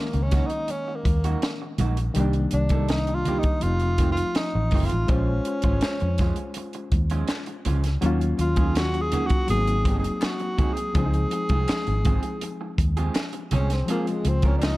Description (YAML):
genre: lush 1970s-style soul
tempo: 82 BPM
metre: 4/4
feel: straight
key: Db major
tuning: A4 = 441 Hz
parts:
  - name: breathy tenor saxophone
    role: melody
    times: 0.0-14.8 s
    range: Ab3 to Ab4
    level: -29 LUFS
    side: equal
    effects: none
  - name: barky reed electric piano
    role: accompaniment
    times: 0.0-14.8 s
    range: Eb3 to C5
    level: -30 LUFS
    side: left 3 dB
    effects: overdrive, fast tremolo
  - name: electric guitar through a small old amp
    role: riff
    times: 0.1-14.7 s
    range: Eb3 to Bb4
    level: -33 LUFS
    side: right 6 dB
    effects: spring reverb
  - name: vintage muted fingered electric bass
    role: bass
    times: 0.1-14.8 s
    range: F1 to F2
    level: -24 LUFS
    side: equal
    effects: none
  - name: compact cocktail drum kit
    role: drums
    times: 0.1-14.8 s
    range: hi-hat, kick drum, snare drum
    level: -26 LUFS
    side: equal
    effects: none
  - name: congas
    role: percussion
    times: 0.3-14.6 s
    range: none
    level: -33 LUFS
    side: right 2 dB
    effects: none
  - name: group handclap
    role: percussion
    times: 5.8-14.8 s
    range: none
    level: -40 LUFS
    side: left 4 dB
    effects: none
room: small room ambience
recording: dark, warm production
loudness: -21 LUFS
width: side -18 dB against mid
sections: 0.0-14.8 A section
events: tenor saxophone solo 0.0-14.8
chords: 0.0 Gb6; 2.2 Cm7; 3.6 F7; 5.1 Bbm7 (rootless); 8.0 Ebm7; 9.5 Ab7; 11.0 Dbmaj7